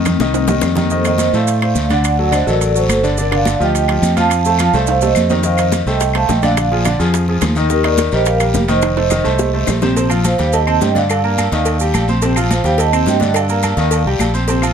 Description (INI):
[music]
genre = latin, salsa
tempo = 212 BPM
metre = 4/4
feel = straight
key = unclear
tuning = A4 = 440 Hz
[part]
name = vibraphone with soft mallets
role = melody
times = 0.0-14.3 s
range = F3 to A5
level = -18 LUFS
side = right 3 dB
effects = none
[part]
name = clear baby grand piano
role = accompaniment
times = 0.0-14.7 s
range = C3 to C6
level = -19 LUFS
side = left 1 dB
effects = none
[part]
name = fingered electric bass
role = bass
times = 0.0-14.7 s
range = F1 to A2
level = -17 LUFS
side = equal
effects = none
[part]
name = bongos and cowbell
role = percussion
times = 0.1-0.8, 5.4-14.6 s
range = none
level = -24 LUFS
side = left 5 dB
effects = none
[part]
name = claves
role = percussion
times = 0.1-14.7 s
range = none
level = -27 LUFS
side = left 9 dB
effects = none
[part]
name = congas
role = percussion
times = 0.1-14.7 s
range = none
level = -22 LUFS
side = equal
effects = none
[part]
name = guiro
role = percussion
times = 0.1-14.7 s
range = none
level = -29 LUFS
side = left 4 dB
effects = none
[part]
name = maracas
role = percussion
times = 0.1-14.7 s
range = none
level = -29 LUFS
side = right 6 dB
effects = none
[part]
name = timbales and agogo bells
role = percussion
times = 0.1-14.7 s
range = none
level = -24 LUFS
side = right 7 dB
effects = none
[sound]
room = little or no reverb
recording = close, detailed microphones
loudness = -12 LUFS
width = side -7 dB against mid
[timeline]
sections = 0.9-10.0 A section; 10.0-14.7 B section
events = drum fill 0.0-0.9, 4.9-5.4, 8.8-10.0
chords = 0.0 F7; 2.0 D7; 3.2 G7(no3); 4.3 F; 5.4 F7; 6.6 Bb7; 7.7 Ebadd9; 8.8 F7; 10.0 Bbsus2; 10.5 Eb6; 11.1 Gm7; 11.7 Eb6; 12.2 Bbsus2; 12.8 Eb6; 13.4 Gm7; 13.9 Eb6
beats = 0.06 0.35 0.63 | 0.91 1.20 1.48 1.76 | 2.05 2.33 2.61 2.90 | 3.18 3.46 3.75 4.03 | 4.31 4.59 4.88 5.16 | 5.44 5.73 6.01 6.29 | 6.57 6.86 7.14 7.42 | 7.70 7.99 8.27 8.55 | 8.83 9.12 9.40 9.68 | 9.96 10.24 10.53 10.81 | 11.09 11.38 11.66 11.94 | 12.22 12.51 12.79 13.07 | 13.35 13.64 13.92 14.20 | 14.48